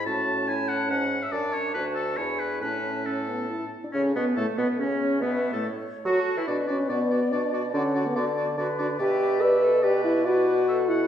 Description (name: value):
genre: quick classical-period movement for wind quintet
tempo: 142 BPM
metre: 3/4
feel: straight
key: A major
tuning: A4 = 440 Hz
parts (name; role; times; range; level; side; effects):
- mellow concert flute; melody; 0.0-10.8 s; A4 to A5; -33 LUFS; left 5 dB; none
- clear oboe; second line; 0.0-11.1 s; B3 to A5; -32 LUFS; left 1 dB; none
- bright clarinet; accompaniment; 0.0-11.1 s; A3 to B4; -33 LUFS; right 4 dB; none
- warm French horn; accompaniment; 0.0-11.1 s; A3 to B4; -25 LUFS; left 1 dB; none
- mellow bassoon; bass; 0.0-11.1 s; D2 to F#3; -30 LUFS; right 2 dB; none
room: wet recital hall reverb, RT60 1.6 s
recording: heard from further back in the room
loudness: -23 LUFS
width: side -9 dB against mid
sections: 0.0-3.9 A section; 3.9-11.1 A section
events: none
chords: 0.1 A; 1.3 D/F#; 1.7 D; 2.2 E7; 2.6 A; 6.5 Bm; 7.7 Bm/D; 9.0 G/B; 10.2 E7(no3)/B